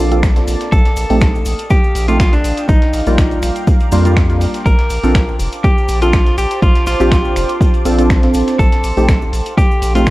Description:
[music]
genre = deep house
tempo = 122 BPM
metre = 4/4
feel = swing 54% on 16ths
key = Bb major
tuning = A4 = 440 Hz
[part]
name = clean electric guitar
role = melody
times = 0.0-10.1 s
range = D4 to Bb4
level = -20 LUFS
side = equal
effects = tape echo
[part]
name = deep dark ambient pad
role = sustained chords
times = 0.0-10.1 s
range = Bb3 to Eb6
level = -26 LUFS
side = right 2 dB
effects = chorus, built-in reverb, sidechain pumping
[part]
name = deep mellow chord stab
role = stabs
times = 0.0-10.1 s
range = G3 to D5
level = -17 LUFS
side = right 1 dB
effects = chorus, cassette tape, sidechain pumping, tape echo
[part]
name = round analog bass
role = bass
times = 0.0-10.1 s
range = F1 to F2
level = -16 LUFS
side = equal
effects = sidechain pumping
[part]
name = downlifter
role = sound effects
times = 0.0-0.7 s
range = none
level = barely audible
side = none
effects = none
[part]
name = deep house drum kit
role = drums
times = 0.1-10.1 s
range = finger snaps, hi-hat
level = -26 LUFS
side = equal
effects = vintage 12-bit sampler grit, small room ambience
[part]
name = cabasa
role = percussion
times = 0.1-10.1 s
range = none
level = -35 LUFS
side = left 2 dB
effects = none
[part]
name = breakbeat sampler-style drum kit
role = drums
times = 0.2-10.1 s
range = hi-hat, snare drum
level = -33 LUFS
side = equal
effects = none
[part]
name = electronic kick drum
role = drums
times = 0.2-10.1 s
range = none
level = -13 LUFS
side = equal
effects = vintage 12-bit sampler grit, small room ambience
[sound]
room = little or no reverb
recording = cassette tape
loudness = -11 LUFS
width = side -18 dB against mid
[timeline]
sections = 0.0-10.1 A section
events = none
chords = 0.0 Bbmaj9; 0.7 F9/Bb; 2.4 Ebmaj9/Bb; 4.7 Bbmaj9; 8.6 F9/Bb

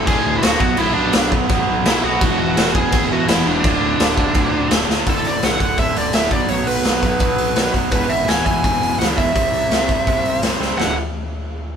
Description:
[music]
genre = punk rock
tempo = 168 BPM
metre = 4/4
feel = straight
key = D lydian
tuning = A4 = 440 Hz
[part]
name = high-gain lead guitar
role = melody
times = 0.0-10.9 s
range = D4 to G#5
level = -20 LUFS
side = right 1 dB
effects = distortion
[part]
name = crunchy overdriven guitar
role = riff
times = 0.0-10.9 s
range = D2 to C4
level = -20 LUFS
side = right 2 dB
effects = none
[part]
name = fuzz picked electric bass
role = bass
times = 0.1-10.9 s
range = D1 to E2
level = -26 LUFS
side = equal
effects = overdrive
[part]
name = raw garage drum kit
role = drums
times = 0.1-10.9 s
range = crash cymbal, hi-hat, kick drum, snare drum, toms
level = -19 LUFS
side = left 1 dB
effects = none
[sound]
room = light reverb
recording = band playing live in one room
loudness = -15 LUFS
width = side -7 dB against mid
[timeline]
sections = 0.0-5.1 A section; 5.1-10.8 B section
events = drum fill 4.9, 10.6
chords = 0.0 D5; 0.6 Bm; 2.2 E; 3.6 D5; 5.1 D; 6.3 B5; 7.9 E; 9.4 C; 10.8 D5

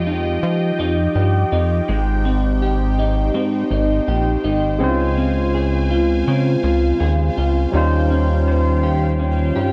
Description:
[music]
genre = indie pop, bedroom pop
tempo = 82 BPM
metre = 4/4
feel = swing 55% on 16ths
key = Ab major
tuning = A4 = 435 Hz
[part]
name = electric guitar through a small old amp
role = accompaniment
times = 0.0-9.7 s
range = Db3 to C5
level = -24 LUFS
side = equal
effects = analog chorus, warbly pitch drift
[part]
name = phased analog pad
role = sustained chords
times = 0.0-9.7 s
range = Eb4 to Ab5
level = -28 LUFS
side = equal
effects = phaser, chorus
[part]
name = chorused synth bass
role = bass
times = 0.0-9.7 s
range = Ab1 to F3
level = -21 LUFS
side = equal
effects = none
[part]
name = barky tine electric piano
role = accompaniment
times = 4.8-9.7 s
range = G3 to C5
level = -24 LUFS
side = equal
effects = none
[sound]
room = light reverb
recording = worn, warbling old tape, cassette tape, warbly pitch drift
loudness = -18 LUFS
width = mono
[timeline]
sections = 0.0-9.7 A section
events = none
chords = 0.0 Fm9; 1.9 Abmaj7; 4.8 Dbmaj7; 7.7 Eb13

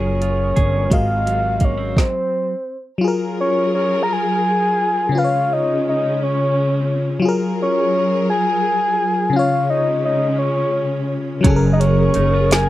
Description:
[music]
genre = slow six-eight R&B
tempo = 57 BPM (dotted quarters)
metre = 6/8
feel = straight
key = unclear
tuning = A4 = 440 Hz
[part]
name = soft octave-layered synth lead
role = melody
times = 0.0-12.7 s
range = C5 to Bb5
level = -19 LUFS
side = left 1 dB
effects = chorus, slapback echo
[part]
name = clean electric guitar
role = second line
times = 0.0-2.5, 11.4-12.7 s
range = Ab2 to Ab4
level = -26 LUFS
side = right 6 dB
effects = none
[part]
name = FM electric piano with soft pad layer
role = accompaniment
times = 0.0-12.7 s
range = Db3 to F5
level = -21 LUFS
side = left 3 dB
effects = chorus
[part]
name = warm studio string section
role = sustained chords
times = 0.0-12.7 s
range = C3 to Bb4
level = -26 LUFS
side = right 3 dB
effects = none
[part]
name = upright bass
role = bass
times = 0.0-1.9, 11.5-12.7 s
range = Gb1 to Ab1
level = -19 LUFS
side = right 1 dB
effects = none
[part]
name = smooth R&B drum kit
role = drums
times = 0.2-2.1, 11.4-12.7 s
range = hi-hat, kick drum, snare drum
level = -17 LUFS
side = right 1 dB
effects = none
[sound]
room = light reverb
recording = dark, warm production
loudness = -16 LUFS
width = side -15 dB against mid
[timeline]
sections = 0.0-3.0 A section; 3.0-12.7 B section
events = stop 2.0-3.0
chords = 0.0 Gbmaj9; 0.9 Ab13; 3.0 Gbmaj9; 5.1 Db; 7.2 Gbmaj9; 9.3 Db; 11.4 Gbmaj9

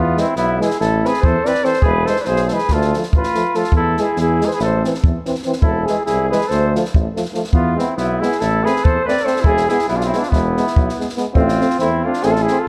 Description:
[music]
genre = balkan folk, Balkan brass band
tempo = 283 BPM (eighths)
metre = 9/8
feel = straight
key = E phrygian dominant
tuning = A4 = 440 Hz
[part]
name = dark cornet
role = melody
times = 0.0-12.7 s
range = E4 to D5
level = -22 LUFS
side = equal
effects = none
[part]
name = warm trumpet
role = second line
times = 0.0-12.7 s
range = B3 to B4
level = -26 LUFS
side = equal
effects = none
[part]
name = clear tuba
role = bass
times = 0.0-12.5 s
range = E1 to E2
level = -23 LUFS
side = equal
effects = none
[part]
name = clear trombone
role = accompaniment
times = 0.2-12.6 s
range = E3 to A3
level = -29 LUFS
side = equal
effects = none
[part]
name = mellow trombone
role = accompaniment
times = 0.2-12.6 s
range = G#3 to C4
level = -27 LUFS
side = equal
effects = none
[part]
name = compact cocktail drum kit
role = percussion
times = 0.2-12.5 s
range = kick drum, snare drum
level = -22 LUFS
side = equal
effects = none
[sound]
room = light reverb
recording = dark, warm production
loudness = -17 LUFS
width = mono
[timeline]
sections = 0.0-11.3 A section; 11.3-12.7 B section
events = none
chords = 0.0 E; 0.8 Am; 1.8 E; 2.7 Dm; 3.7 E; 4.6 Am; 5.6 E; 6.5 Dm; 7.5 E; 8.4 Am; 9.4 E; 11.3 Am

